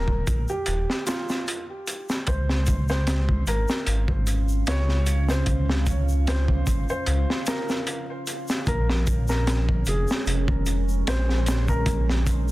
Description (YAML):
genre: trip hop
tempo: 75 BPM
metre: 4/4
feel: swing 54% on 16ths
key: unclear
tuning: A4 = 439 Hz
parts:
  - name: felt-muted upright piano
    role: melody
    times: 0.0-12.0 s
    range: F4 to Db5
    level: -32 LUFS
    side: equal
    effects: tape echo
  - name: dark detuned saw bass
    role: bass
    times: 0.0-12.5 s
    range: Eb1 to Db2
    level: -23 LUFS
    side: equal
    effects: none
  - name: crunchy breakbeat drum kit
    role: drums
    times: 0.1-12.5 s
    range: hi-hat, kick drum, snare drum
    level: -26 LUFS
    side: equal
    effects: none
  - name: egg shaker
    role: percussion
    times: 0.3-12.5 s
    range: none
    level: -41 LUFS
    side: left 2 dB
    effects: none
  - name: deep dark ambient pad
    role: sustained chords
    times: 3.5-12.5 s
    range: Ab3 to F5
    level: -33 LUFS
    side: right 3 dB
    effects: chorus, built-in reverb
room: studio reverb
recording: dense, heavily limited modern master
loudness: -22 LUFS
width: side -18 dB against mid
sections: 0.0-12.5 A section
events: none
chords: 0.0 Eb5; 2.3 Db; 8.7 Bbm7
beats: 0.67 1.47 | 2.27 3.07 3.87 4.67 | 5.47 6.27 7.07 7.87 | 8.67 9.47 10.27 11.07 | 11.87